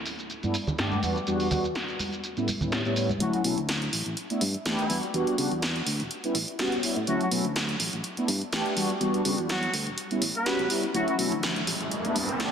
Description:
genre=filtered disco house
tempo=124 BPM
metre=4/4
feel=swing 54% on 16ths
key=D major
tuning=A4 = 439 Hz
part: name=punchy analog drum machine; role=drums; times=0.1-12.5 s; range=hi-hat, shaker, snare drum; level=-30 LUFS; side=equal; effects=high-pass filter on perc, low-pass filter on perc, high-pass filter on hats, low-pass filter on hats, high-pass filter on snare, low-pass filter on snare, high-pass filter on room, low-pass filter on room
part: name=tube shaker and congas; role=percussion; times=0.1-3.2 s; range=none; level=-34 LUFS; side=right 2 dB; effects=low-pass filter on perc
part: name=mellow synth brass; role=accompaniment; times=0.4-12.5 s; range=E2 to G4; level=-28 LUFS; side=equal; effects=chorus, phaser, low-pass filter
part: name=bright horn section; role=melody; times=3.2-11.1 s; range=E3 to B4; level=-34 LUFS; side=left 1 dB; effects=vintage 12-bit sampler grit, low-pass filter, dub echo
part: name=modern bright fingered electric bass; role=bass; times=3.2-12.5 s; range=E1 to C#3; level=-32 LUFS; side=equal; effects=high-pass filter, low-pass filter
part: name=riser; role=sound effects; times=11.2-12.5 s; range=none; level=-31 LUFS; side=right 1 dB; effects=none
room=wet lush hall reverb, RT60 2.6 s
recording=dense, heavily limited modern master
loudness=-25 LUFS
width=side -7 dB against mid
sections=0.0-3.2 A section; 3.2-12.5 B section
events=build-up 3.2-12.5; filter sweep on horn section 3.2-12.5; filter sweep 3.2-12.5; riser 11.2-12.5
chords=0.3 G6; 1.0 Em7; 2.2 A7; 3.2 Dmaj9; 4.2 G6; 4.9 Em7; 6.1 A7; 7.1 Dmaj9; 8.0 G6; 8.8 Em7; 10.0 A7; 10.9 Dmaj9; 11.9 G6

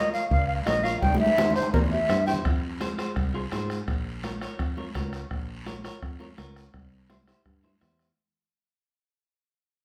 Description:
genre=latin, cumbia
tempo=168 BPM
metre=4/4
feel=straight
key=F harmonic minor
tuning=A4 = 439 Hz
part: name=mellow silver concert flute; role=melody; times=0.0-2.3 s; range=Bb4 to G5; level=-27 LUFS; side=equal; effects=none
part: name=electric guitar at the edge of break-up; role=accompaniment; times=0.0-8.1 s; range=E4 to Db5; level=-39 LUFS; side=equal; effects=none
part: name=guiro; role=percussion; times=0.1-8.2 s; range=none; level=-45 LUFS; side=equal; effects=none
part: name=fingered electric bass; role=bass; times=0.3-8.1 s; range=Bb1 to Ab2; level=-34 LUFS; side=equal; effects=none
part: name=bombo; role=percussion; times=0.3-8.2 s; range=none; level=-32 LUFS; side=equal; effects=none
part: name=congas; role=percussion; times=0.3-8.0 s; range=none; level=-35 LUFS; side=equal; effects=none
part: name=cowbell and timbales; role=percussion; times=0.3-5.3 s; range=none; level=-40 LUFS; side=equal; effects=none
room=wet large studio reverb, RT60 0.8 s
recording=band playing live in one room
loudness=-26 LUFS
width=mono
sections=0.0-2.5 A section; 2.5-8.2 B section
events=drum fill 1.0-2.5; fade-out 2.5-8.2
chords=0.0 Bbm; 1.0 C; 2.5 Fm; 3.9 Bbm; 6.7 C

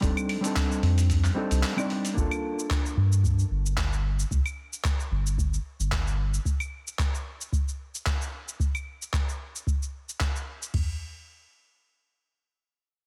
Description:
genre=sunset chillout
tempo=112 BPM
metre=4/4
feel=swing 55% on 16ths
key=G minor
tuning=A4 = 440 Hz
part: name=hollow-body jazz guitar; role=accompaniment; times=0.0-4.3 s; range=G3 to D5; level=-32 LUFS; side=equal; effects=vintage 12-bit sampler grit, low-pass filter, digital delay
part: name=warm sub bass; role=bass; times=0.0-6.4 s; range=F1 to G2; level=-26 LUFS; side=equal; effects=none
part: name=dusty soul sampler-style drum kit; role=drums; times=0.0-10.7 s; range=cabasa, claves, handclaps, hi-hat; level=-36 LUFS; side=equal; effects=none
part: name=soft vintage rhythm box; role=drums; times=0.0-10.9 s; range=crash cymbal, kick drum, toms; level=-30 LUFS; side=equal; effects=none
room=digital ambience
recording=dense, heavily limited modern master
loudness=-28 LUFS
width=mono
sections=0.0-2.2 A section; 2.2-10.7 B section; 10.7-13.1 C section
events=break 1.6-2.2; filter sweep on hollow-body jazz guitar 2.2-4.3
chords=0.0 F13; 2.2 Gm9; 4.3 N.C.

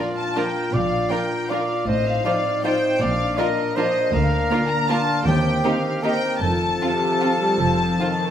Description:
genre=classical, orchestral ballroom waltz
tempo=157 BPM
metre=3/4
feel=uneven beats, rubato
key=Bb major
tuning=A4 = 441 Hz
part: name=warm studio violin section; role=melody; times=0.0-8.3 s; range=D5 to Bb5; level=-25 LUFS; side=left 3 dB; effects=none
part: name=mellow cor anglais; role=second line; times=0.0-8.3 s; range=F4 to D5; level=-24 LUFS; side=right 2 dB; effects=none
part: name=warm studio violin section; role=second line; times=0.0-8.1 s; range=C4 to C5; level=-28 LUFS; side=left 1 dB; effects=none
part: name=dark studio viola section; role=accompaniment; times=0.0-8.3 s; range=C3 to Eb4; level=-28 LUFS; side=right 2 dB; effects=none
part: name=dark French horn section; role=sustained chords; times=0.0-8.2 s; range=Bb3 to F4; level=-28 LUFS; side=left 2 dB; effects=none
part: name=concert harp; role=arpeggios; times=0.0-8.3 s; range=A2 to Eb5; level=-28 LUFS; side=left 5 dB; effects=none
part: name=dark studio cello section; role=bass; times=0.7-7.9 s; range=D2 to Bb2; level=-26 LUFS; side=right 1 dB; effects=none
part: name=warm studio double bass section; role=bass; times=0.7-7.9 s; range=F1 to Eb2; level=-28 LUFS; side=right 3 dB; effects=none
room=wet recital hall reverb, RT60 1.4 s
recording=none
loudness=-18 LUFS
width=side -9 dB against mid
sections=0.0-8.3 A section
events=none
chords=0.0 Bb; 1.9 F7/A; 3.0 Bb; 4.1 Bb/D; 5.3 Cm7/Eb; 6.4 F

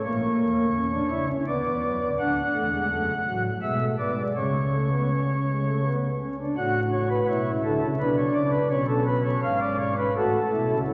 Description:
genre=classical, baroque-style 3-part fugue for pipe organ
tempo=83 BPM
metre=3/4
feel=straight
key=F# minor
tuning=A4 = 437 Hz
part: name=pipe organ, flutes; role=solo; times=0.0-10.9 s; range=C#1 to F#5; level=-25 LUFS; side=equal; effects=none
room=wet church reverb, RT60 3.3 s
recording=vinyl crackle, nothing above 7.7 kHz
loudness=-25 LUFS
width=mono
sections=0.0-6.6 A section; 6.6-10.9 B section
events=none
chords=0.1 C#m6; 1.5 Bm/D; 2.2 D; 3.6 G#dim/B; 4.4 C#5; 6.6 F#m/A; 8.0 Bm; 8.7 C#7/B; 10.2 F#m/A

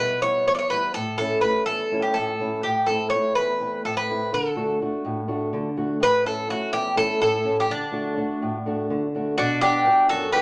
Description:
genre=greek folk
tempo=249 BPM (eighths)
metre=7/8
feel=straight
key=D major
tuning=A4 = 439 Hz
part: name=Greek bouzouki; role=melody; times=0.0-10.4 s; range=D4 to D5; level=-24 LUFS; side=equal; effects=none
part: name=fingerpicked old ladder-braced acoustic guitar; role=accompaniment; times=0.0-10.4 s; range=E2 to F#5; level=-30 LUFS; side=equal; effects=none
part: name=mandolin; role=second line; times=9.4-10.4 s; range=D4 to G4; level=-26 LUFS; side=equal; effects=none
room=wet studio reverb, RT60 0.5 s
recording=none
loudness=-23 LUFS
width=mono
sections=0.0-9.4 A section; 9.4-10.4 B section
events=none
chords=0.0 Em; 1.0 A; 2.6 Am; 4.3 D; 6.0 A; 7.7 D; 9.4 Bm

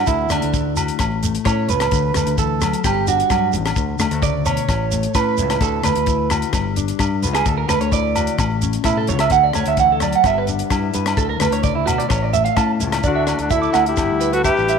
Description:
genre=highlife guitar band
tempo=130 BPM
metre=4/4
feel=straight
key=D major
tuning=A4 = 440 Hz
part: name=mellow electric guitar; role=accompaniment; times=0.0-14.8 s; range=A2 to B4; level=-24 LUFS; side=left 13 dB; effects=none
part: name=electric guitar through a small old amp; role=arpeggios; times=0.0-14.8 s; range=D4 to D6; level=-20 LUFS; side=right 10 dB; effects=slapback echo
part: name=fingered electric bass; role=bass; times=0.0-14.8 s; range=G1 to A2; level=-23 LUFS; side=left 1 dB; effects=none
part: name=tight funk drum kit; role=drums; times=0.1-14.8 s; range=hi-hat, kick drum, rim click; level=-24 LUFS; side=left 3 dB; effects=none
part: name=shekere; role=percussion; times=0.1-14.8 s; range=none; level=-27 LUFS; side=right 4 dB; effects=none
part: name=agogo bells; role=percussion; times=0.3-14.6 s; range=none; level=-26 LUFS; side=left 3 dB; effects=none
part: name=breathy alto saxophone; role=melody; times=13.0-14.8 s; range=D4 to G4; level=-19 LUFS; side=left 2 dB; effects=none
part: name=dark trumpet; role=second line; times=13.1-14.8 s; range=F#4 to B4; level=-25 LUFS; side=left 11 dB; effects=none
room=light reverb, small room ambience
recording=1960s-style stereo with parts hard left and right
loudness=-16 LUFS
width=side -6 dB against mid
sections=0.0-13.0 A section; 13.0-14.8 B section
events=clean electric guitar solo 0.0-13.0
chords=0.1 Dadd9; 1.0 A; 1.9 Dadd9; 2.8 G5; 3.8 D5; 4.7 Aadd9; 5.6 Dadd9; 6.5 G; 7.5 Dadd9; 8.4 Aadd9; 9.3 Dadd9; 10.2 G6; 11.2 Dsus2; 12.1 A; 13.0 Dadd9; 14.0 G6

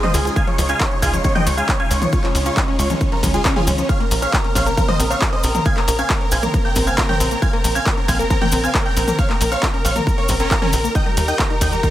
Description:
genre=uplifting trance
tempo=136 BPM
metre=4/4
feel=straight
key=unclear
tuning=A4 = 435 Hz
part: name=big supersaw lead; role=melody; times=0.0-11.9 s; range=Db4 to Ab5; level=-22 LUFS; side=right 1 dB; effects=cassette tape, sidechain pumping, digital delay
part: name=warm baby grand piano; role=second line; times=0.0-11.9 s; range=Db5 to Ab6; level=-27 LUFS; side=right 1 dB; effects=sidechain pumping, digital delay
part: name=muted studio string section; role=sustained chords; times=0.0-11.9 s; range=Db3 to Bb4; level=-29 LUFS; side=equal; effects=sidechain pumping
part: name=tight sequenced synth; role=arpeggios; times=0.0-11.9 s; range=Eb3 to G4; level=-27 LUFS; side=left 4 dB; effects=chorus, vintage 12-bit sampler grit, sidechain pumping, digital delay
part: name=punchy analog drum machine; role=drums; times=0.0-11.9 s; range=handclaps, hi-hat, ride cymbal, toms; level=-23 LUFS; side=equal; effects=none
part: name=tight sequencer bass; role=bass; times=0.1-11.8 s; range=Bb1 to Eb2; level=-21 LUFS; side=equal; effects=sidechain pumping
part: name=cabasa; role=percussion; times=0.1-11.9 s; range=none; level=-30 LUFS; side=left 3 dB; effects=none
part: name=electronic kick drum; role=drums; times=0.4-11.9 s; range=none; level=-19 LUFS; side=equal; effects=none
room=digital ambience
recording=none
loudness=-15 LUFS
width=side -13 dB against mid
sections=0.0-11.9 A section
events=none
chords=0.0 Dbadd9; 3.9 Bbmadd9; 11.0 Eb

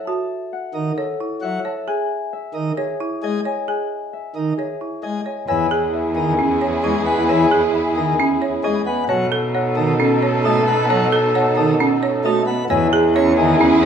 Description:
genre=classical, minimalist pattern music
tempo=133 BPM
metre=4/4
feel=straight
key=unclear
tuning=A4 = 438 Hz
part: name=Celtic harp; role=melody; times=0.0-13.9 s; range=G#4 to A5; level=-24 LUFS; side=left 10 dB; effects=none
part: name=folk marimba with hard mallets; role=arpeggios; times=0.0-13.9 s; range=C#4 to C#5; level=-22 LUFS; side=right 5 dB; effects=none
part: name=pipe organ, plenum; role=accompaniment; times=0.7-13.5 s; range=D#3 to C#4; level=-22 LUFS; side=right 1 dB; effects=none
part: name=mellow soprano saxophone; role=second line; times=5.5-13.9 s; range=G#4 to A4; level=-24 LUFS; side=right 2 dB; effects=none
part: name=rich symphonic string section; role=sustained chords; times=5.5-13.9 s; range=D#4 to A4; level=-24 LUFS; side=left 1 dB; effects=none
part: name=rich cello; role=bass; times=5.5-13.9 s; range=E2 to B2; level=-22 LUFS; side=right 1 dB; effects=none
room=wet large studio reverb, RT60 0.8 s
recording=heard from further back in the room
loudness=-16 LUFS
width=side -8 dB against mid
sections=0.0-5.5 A section; 5.5-13.9 B section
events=none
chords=0.0 F#m7; 1.9 Emaj7; 9.1 B7; 12.7 Emaj7

